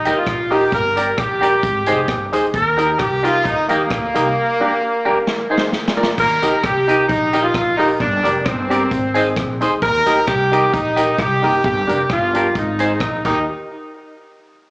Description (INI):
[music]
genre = ska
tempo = 132 BPM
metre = 4/4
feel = swing 54% on 8ths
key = Eb major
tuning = A4 = 440 Hz
[part]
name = clear horn section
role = melody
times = 0.0-13.4 s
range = Bb3 to Bb4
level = -17 LUFS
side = equal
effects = slapback echo, tape echo
[part]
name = upright bass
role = bass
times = 0.0-13.4 s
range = F1 to Eb2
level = -26 LUFS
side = equal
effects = none
[part]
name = semi-hollow electric guitar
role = accompaniment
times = 0.1-13.4 s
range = D4 to Eb5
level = -20 LUFS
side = right 1 dB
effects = phaser, slapback echo
[part]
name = dark upright piano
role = stabs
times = 0.1-13.4 s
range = D4 to C5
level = -23 LUFS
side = equal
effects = tape echo
[part]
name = swinging big-band drum kit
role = drums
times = 0.1-13.3 s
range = crash cymbal, hi-hat, kick drum, rim click, snare drum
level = -24 LUFS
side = equal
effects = vintage 12-bit sampler grit, slapback echo
[sound]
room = light reverb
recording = live gig heard through the venue's PA, club reverb, small speaker sound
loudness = -14 LUFS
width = side -26 dB against mid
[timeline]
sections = 0.0-6.2 A section; 6.2-13.5 B section; 13.5-14.7 C section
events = drum fill 5.3-6.2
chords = 0.0 Eb; 0.7 Gm; 1.6 Ab; 2.5 Eb; 4.4 Gm; 5.3 Ab; 5.7 Bb; 6.2 Eb; 8.0 Gm; 8.9 Ab; 9.8 Eb; 11.6 Gm; 12.6 Ab; 13.2 Eb; 13.5 N.C.